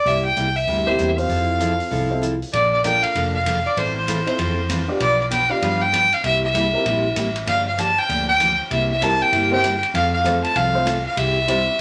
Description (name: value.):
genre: country, western swing.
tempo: 194 BPM.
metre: 4/4.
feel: swing 62% on 8ths.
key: F major.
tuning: A4 = 436 Hz.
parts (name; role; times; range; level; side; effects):
clear fiddle; melody; 0.0-11.8 s; C5 to A5; -21 LUFS; equal; none.
picked steel-string acoustic guitar; accompaniment; 0.1-11.6 s; B2 to B4; -28 LUFS; equal; none.
vintage muted fingered electric bass; bass; 0.1-11.7 s; F1 to G2; -29 LUFS; equal; none.
vintage drum kit; drums; 0.1-11.8 s; hi-hat, kick drum, ride cymbal; -33 LUFS; equal; none.
dark upright piano; accompaniment; 0.9-6.8, 9.0-11.7 s; G3 to D5; -28 LUFS; equal; none.
room: moderate studio reverb, RT60 0.6 s.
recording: none.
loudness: -20 LUFS.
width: mono.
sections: 0.0-2.5 A section; 2.5-11.8 B section.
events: none.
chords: 0.1 C7; 1.3 Fmaj7; 2.5 Bbmaj7; 3.8 Fmaj7/A; 5.0 G7/B; 6.2 C7; 7.5 Gm7; 8.7 C7; 9.9 F; 11.2 C.